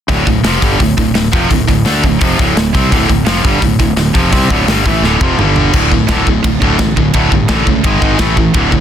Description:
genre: heavy metal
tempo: 170 BPM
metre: 4/4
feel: straight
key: D minor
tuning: A4 = 439 Hz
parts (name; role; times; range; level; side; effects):
- heavy high-gain guitar; riff; 0.1-8.8 s; D2 to D4; -16 LUFS; left 12 dB; distortion
- heavy high-gain guitar; riff; 0.1-8.8 s; D2 to D4; -15 LUFS; right 9 dB; distortion
- fuzz fingered electric bass; bass; 0.1-8.8 s; D1 to D2; -17 LUFS; equal; overdrive
- modern studio drum kit; drums; 0.1-8.8 s; crash cymbal, hi-hat, kick drum, ride cymbal, snare drum, toms; -14 LUFS; equal; none
room: light reverb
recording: dense, heavily limited modern master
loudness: -9 LUFS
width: side -9 dB against mid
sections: 0.1-5.7 A section; 5.7-8.8 B section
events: drum fill 5.0-5.7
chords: 0.1 Dm; 5.4 G5; 5.7 D5; 7.8 G#5; 8.2 A5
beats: | 0.09 0.44 0.80 1.15 | 1.50 1.85 2.21 2.56 | 2.91 3.27 3.62 3.97 | 4.33 4.68 5.03 5.38 | 5.73 6.09 6.44 6.79 | 7.14 7.49 7.84 8.20 | 8.55

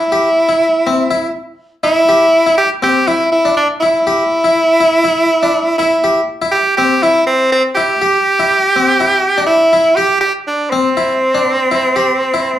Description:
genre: afrobeat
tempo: 122 BPM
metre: 4/4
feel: straight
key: C major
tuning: A4 = 440 Hz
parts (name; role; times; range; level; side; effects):
- edgy tenor saxophone; melody; 0.0-12.6 s; C4 to G4; -11 LUFS; right 1 dB; slapback echo
- harpsichord; arpeggios; 0.0-12.5 s; C4 to G4; -18 LUFS; left 4 dB; slapback echo
room: wet club reverb, RT60 0.5 s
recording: live gig heard through the venue's PA, club reverb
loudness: -10 LUFS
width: side -12 dB against mid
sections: 0.0-12.6 A section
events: none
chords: 0.0 C (rootless)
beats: | 0.12 0.61 1.10 1.60 | 2.09 2.58 3.08 3.57 | 4.06 4.55 5.05 5.54 | 6.04 6.53 7.02 7.51 | 8.01 8.50 8.99 9.49 | 9.98 10.48 10.97 11.46 | 11.96 12.45

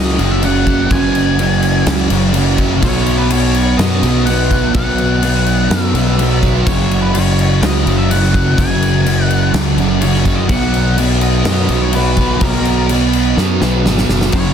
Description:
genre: rock, shoegaze and dream pop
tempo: 125 BPM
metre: 4/4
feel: straight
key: unclear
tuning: A4 = 440 Hz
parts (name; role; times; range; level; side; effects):
- octave-fuzz lead guitar; melody; 0.0-14.5 s; A#4 to G#5; -23 LUFS; left 2 dB; distortion, slapback echo
- thick fuzz guitar; riff; 0.0-14.5 s; F#2 to B3; -15 LUFS; right 2 dB; distortion, lush chorus
- modern bright fingered electric bass; bass; 0.0-14.5 s; F#1 to F#2; -16 LUFS; equal; none
- big rock drum kit; drums; 0.2-14.4 s; crash cymbal, kick drum, snare drum; -18 LUFS; left 1 dB; none
room: little or no reverb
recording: dense, heavily limited modern master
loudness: -11 LUFS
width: side -8 dB against mid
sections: 0.0-14.5 A section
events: drum fill 13.4-14.3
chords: 0.0 F#sus2; 2.8 B5; 6.7 F#sus2; 10.5 B5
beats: 0.43 | 0.91 1.39 1.87 2.35 | 2.83 3.31 3.79 4.27 | 4.75 5.22 5.71 6.18 | 6.66 7.14 7.62 8.10 | 8.58 9.06 9.54 10.02 | 10.50 10.98 11.46 11.94 | 12.42 12.90 13.38 13.86 | 14.34

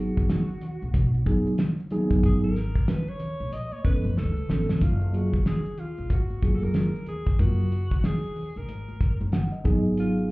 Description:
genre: hip hop, jazz-hop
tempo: 93 BPM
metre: 4/4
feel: swing 62% on 16ths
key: F# major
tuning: A4 = 442 Hz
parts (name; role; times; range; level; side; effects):
- clear alto saxophone; melody; 0.0-10.3 s; E#4 to D#5; -37 LUFS; equal; analog delay
- mellow tine electric piano; accompaniment; 0.0-10.3 s; E#3 to F#5; -26 LUFS; right 1 dB; medium stereo tremolo
- upright bass; bass; 0.0-10.3 s; F#1 to C#2; -27 LUFS; equal; none
- cloth-damped thuddy drum kit; drums; 0.2-10.2 s; hi-hat, kick drum, snare drum; -24 LUFS; equal; vintage 12-bit sampler grit
- maracas and congas; percussion; 0.2-10.3 s; none; -39 LUFS; left 1 dB; none
room: moderate studio reverb, RT60 0.6 s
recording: heard muffled through a wall, club reverb, EQ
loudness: -22 LUFS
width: side -21 dB against mid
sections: 0.0-4.8 A section; 4.8-10.3 B section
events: alto saxophone solo 0.0-4.8; drum fill 4.2-4.8; tine electric piano fill 9.0-10.0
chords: 0.0 G#m7; 4.2 C#7b13; 4.8 F#maj9; 9.7 G#m7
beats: 0.30 0.94 1.59 | 2.23 2.88 3.52 4.17 | 4.81 5.46 6.11 6.75 | 7.39 8.04 8.69 9.33 | 9.98

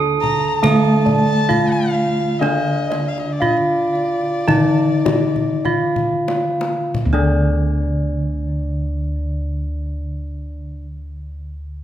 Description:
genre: Javanese gamelan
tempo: 44-75 BPM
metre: 4/4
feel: straight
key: unclear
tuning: A4 = 438 Hz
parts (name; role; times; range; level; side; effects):
- gamelan-type bronze metallophone; melody; 0.0-10.8 s; D4 to A4; -21 LUFS; right 1 dB; none
- gamelan-type bronze metallophone; accompaniment; 0.0-10.9 s; D3 to A3; -23 LUFS; equal; none
- gamelan-type bossed gongs; arpeggios; 0.0-10.9 s; D5 to A5; -28 LUFS; left 4 dB; tape echo
- gamelan-type bronze metallophone; arpeggios; 0.0-10.9 s; D5 to A5; -26 LUFS; right 2 dB; none
- gamelan-type bossed gongs; bass; 0.0-10.8 s; D2 to Eb4+35c; -22 LUFS; equal; none
- warm erhu; second line; 0.2-6.1 s; D5 to Bb5; -25 LUFS; left 3 dB; none
- kendang; percussion; 0.2-7.6 s; none; -26 LUFS; left 2 dB; none
room: wet recital hall reverb, RT60 1.9 s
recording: none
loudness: -16 LUFS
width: side -11 dB against mid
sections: 0.0-6.9 A section; 6.9-11.8 B section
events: slowing down 0.0-6.9; drum fill 5.4-6.9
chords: none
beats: 0.63 1.49 | 2.42 3.41 4.48 5.65 | 6.94 8.28 9.63

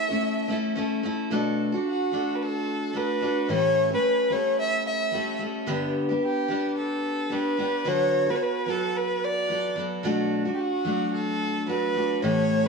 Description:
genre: acoustic pop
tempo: 110 BPM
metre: 4/4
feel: swing 55% on 16ths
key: B minor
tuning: A4 = 436 Hz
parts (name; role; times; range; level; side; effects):
- rich violin; melody; 0.0-12.7 s; F#4 to E5; -26 LUFS; equal; tape echo
- picked steel-string acoustic guitar; accompaniment; 0.0-12.7 s; G2 to A4; -26 LUFS; equal; none
room: moderate studio reverb, RT60 0.6 s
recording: none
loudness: -23 LUFS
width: side -4 dB against mid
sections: 0.0-1.3 A section; 1.3-12.7 B section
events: none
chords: 0.0 A; 1.3 Bm7; 3.5 A7; 5.7 G; 7.9 D6; 10.0 Bm7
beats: 0.22 0.77 | 1.31 1.85 2.40 2.95 | 3.49 4.04 4.58 5.13 | 5.67 6.22 6.77 7.31 | 7.86 8.40 8.95 9.50 | 10.04 10.59 11.14 11.68 | 12.23

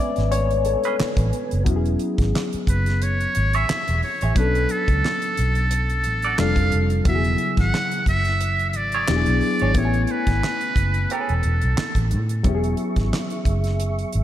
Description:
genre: R&B, neo-soul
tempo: 89 BPM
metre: 4/4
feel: swing 55% on 16ths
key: E mixolydian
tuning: A4 = 440 Hz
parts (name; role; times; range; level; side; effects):
- barky reed electric piano; accompaniment; 0.0-14.2 s; C#3 to G#5; -25 LUFS; left 3 dB; lush chorus
- percussive tonewheel organ; sustained chords; 0.0-1.6, 12.4-14.2 s; B3 to C#6; -31 LUFS; right 2 dB; chorus vibrato, slow rotary speaker
- vintage muted fingered electric bass; bass; 0.2-14.2 s; E1 to A2; -22 LUFS; equal; none
- damped 70s drum kit; drums; 0.2-14.2 s; handclaps, hi-hat, kick drum, snare drum; -25 LUFS; right 1 dB; none
- clean electric guitar; second line; 0.9-11.3 s; C#4 to D5; -30 LUFS; right 6 dB; wah, lush chorus
- trumpet with metal mute; melody; 2.7-12.1 s; A4 to F#5; -24 LUFS; right 1 dB; ping-pong delay
room: moderate lush hall reverb, RT60 2.3 s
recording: dreamy mix soaked in reverb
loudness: -19 LUFS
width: side -12 dB against mid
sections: 0.0-1.7 A section; 1.7-14.2 B section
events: reed electric piano solo 0.0-1.7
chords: 0.0 Amaj9; 1.7 E6; 4.4 Bm7; 6.4 F6; 7.1 E6; 9.1 E9; 9.8 E6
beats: 0.31 0.99 | 1.66 2.34 3.01 3.68 | 4.36 5.03 5.71 6.38 | 7.05 7.73 8.40 9.08 | 9.75 10.43 11.10 11.77 | 12.45 13.12 13.80

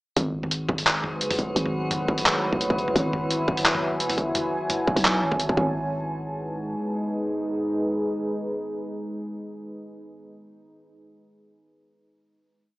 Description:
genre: half-time drum and bass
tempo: 172 BPM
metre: 4/4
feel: swing 54% on 16ths, half-time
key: G# phrygian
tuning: A4 = 442 Hz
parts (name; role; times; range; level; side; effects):
- deep dark ambient pad; sustained chords; 0.8-9.3 s; G#3 to A5; -28 LUFS; equal; chorus, built-in reverb, sidechain pumping
- growling 808-style bass; bass; 0.2-6.8 s; F#1 to B1; -30 LUFS; equal; none
- boom bap sampler-style drum kit; drums; 0.2-5.5 s; handclaps, hi-hat, toms; -24 LUFS; equal; none
- electronic kick drum; drums; 0.2-5.6 s; none; -27 LUFS; equal; distortion
- metallic inharmonic drone; texture; 0.6-5.8 s; F#3 to F#4; -34 LUFS; left 1 dB; chorus, built-in reverb
room: light reverb, digital ambience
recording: dry, gritty hardware recording, small speaker sound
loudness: -23 LUFS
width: side -20 dB against mid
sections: 0.2-5.7 drop; 5.7-8.5 final hit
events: drop 0.2-5.7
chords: 0.2 G#m; 1.6 A/G#; 3.0 E/G#; 4.3 F#m/G#; 5.6 G#m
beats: | 0.16 0.51 0.86 1.21 | 1.56 1.91 2.26 2.60 | 2.95 3.30 3.65 4.00 | 4.35 4.70 5.05 5.40 | 5.75 6.09 6.44 6.79 | 7.14 7.49 7.84 8.19

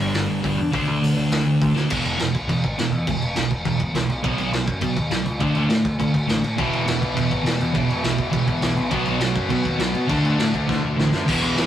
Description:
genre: punk rock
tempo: 205 BPM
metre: 4/4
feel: straight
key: unclear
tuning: A4 = 442 Hz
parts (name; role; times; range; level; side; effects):
- sludgy distorted guitar; riff; 0.0-11.7 s; E2 to D4; -22 LUFS; right 1 dB; overdrive
- growling picked electric bass; bass; 0.0-11.7 s; E1 to B2; -26 LUFS; left 1 dB; overdrive
- raw garage drum kit; drums; 0.1-11.6 s; crash cymbal, hi-hat, kick drum, snare drum; -24 LUFS; equal; none
- distorted electric guitar; riff; 6.6-11.7 s; E2 to D4; -25 LUFS; left 1 dB; overdrive
room: moderate studio reverb, RT60 0.6 s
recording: rough rehearsal-room recording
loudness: -19 LUFS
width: side -10 dB against mid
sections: 0.0-1.9 A section; 1.9-11.3 B section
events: half time 0.0-1.9; drum fill 1.8, 10.7-11.3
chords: 0.0 G5; 0.7 D5; 1.9 E5; 4.2 B5; 5.4 D5; 6.6 E5; 8.9 B5; 10.1 D5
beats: 0.15 0.44 | 0.73 1.02 1.32 1.61 | 1.90 2.19 2.49 2.78 | 3.07 3.36 3.65 3.95 | 4.24 4.53 4.82 5.12 | 5.41 5.70 5.99 6.29 | 6.58 6.87 7.16 7.46 | 7.75 8.04 8.33 8.63 | 8.92 9.21 9.51 9.80 | 10.09 10.38 10.68 10.97 | 11.26 11.56

